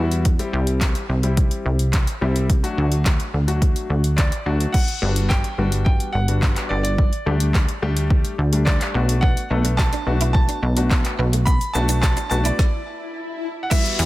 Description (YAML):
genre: dance-pop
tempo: 107 BPM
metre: 4/4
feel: straight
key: unclear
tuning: A4 = 441 Hz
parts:
  - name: warm grand piano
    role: accompaniment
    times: 0.0-14.1 s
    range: F#3 to A4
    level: -27 LUFS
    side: left 3 dB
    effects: sidechain pumping
  - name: plucky analog bass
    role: bass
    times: 0.0-14.1 s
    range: G1 to E2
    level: -20 LUFS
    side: equal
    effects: sidechain pumping
  - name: deep house drum kit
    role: drums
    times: 0.1-14.1 s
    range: crash cymbal, handclaps, hi-hat, kick drum, shaker, snare drum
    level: -20 LUFS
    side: equal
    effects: none
  - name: clear concert grand piano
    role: melody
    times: 4.2-14.1 s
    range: D5 to B5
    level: -28 LUFS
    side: right 2 dB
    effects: digital delay
  - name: direct-recorded clean electric guitar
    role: riff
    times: 9.2-14.0 s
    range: A3 to E4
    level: -31 LUFS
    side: right 6 dB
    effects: ensemble chorus
  - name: swell and downlifter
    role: sound effects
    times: 12.7-14.1 s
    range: none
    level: -30 LUFS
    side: left 3 dB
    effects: none
  - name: mallet-like synth pluck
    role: arpeggios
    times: 13.7-13.8 s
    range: G3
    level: -31 LUFS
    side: right 8 dB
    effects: chorus, sidechain pumping
  - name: tambourine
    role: percussion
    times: 13.7-14.1 s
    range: none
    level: -37 LUFS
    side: left 4 dB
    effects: none
room: digital ambience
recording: none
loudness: -17 LUFS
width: side -17 dB against mid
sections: 0.0-4.7 A section; 4.7-13.7 B section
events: stop 12.6-13.7; swell 12.7-13.7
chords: 0.3 C; 2.5 D; 4.7 Gmaj7; 7.0 Dsus4; 8.9 Bm7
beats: | 0.25 0.81 1.38 1.94 | 2.50 3.06 3.62 4.18 | 4.74 5.30 5.86 6.42 | 6.98 7.54 8.10 8.66 | 9.22 9.79 10.35 10.91 | 11.47 12.03 12.59 13.15 | 13.71